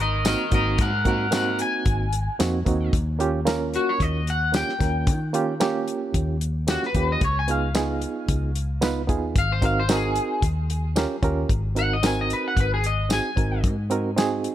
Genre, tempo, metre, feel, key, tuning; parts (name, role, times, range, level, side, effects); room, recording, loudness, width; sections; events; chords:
straight-eighth soul blues; 112 BPM; 4/4; swing 54% on 16ths; Ab mixolydian; A4 = 439 Hz
electric guitar at the edge of break-up; melody; 0.0-13.6 s; Gb4 to Ab5; -26 LUFS; left 2 dB; wide subtle chorus
vintage muted fingered electric bass; bass; 0.0-14.5 s; Ab1 to Eb3; -26 LUFS; left 1 dB
barky reed electric piano; accompaniment; 0.2-14.5 s; Bb3 to Cb5; -26 LUFS; right 5 dB; overdrive, fast tremolo
damped 70s drum kit; drums; 0.2-14.5 s; hi-hat, kick drum, snare drum, tambourine; -25 LUFS; left 1 dB
small room ambience; -21 LUFS; side -12 dB against mid
0.0-11.5 A section; 11.5-14.5 B section
clean electric guitar solo 0.0-11.5
0.0 Ab9; 2.9 Eb9; 7.2 Db9; 9.4 Ab9; 10.4 Eb9; 11.5 Ab9